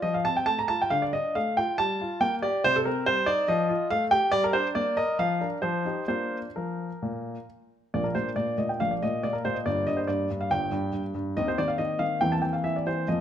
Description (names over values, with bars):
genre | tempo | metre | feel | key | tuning
classical-period piano sonatina | 139 BPM | 4/4 | rubato | Bb major | A4 = 438 Hz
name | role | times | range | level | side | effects
warm grand piano | solo | 0.0-13.2 s | G1 to Bb5 | -24 LUFS | equal | none
room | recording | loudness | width
moderate recital hall reverb, RT60 1.4 s | close, detailed microphones | -24 LUFS | side -9 dB against mid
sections
0.0-7.9 A section; 7.9-13.2 A section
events
none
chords
0.0 F; 0.9 Dm; 1.8 Gm7; 2.6 Cm; 3.5 F9; 4.3 Gm; 5.2 Bb/F; 5.6 Fsus2; 6.1 Bb; 9.7 Gm; 11.4 Cm7/Eb; 12.2 C7/E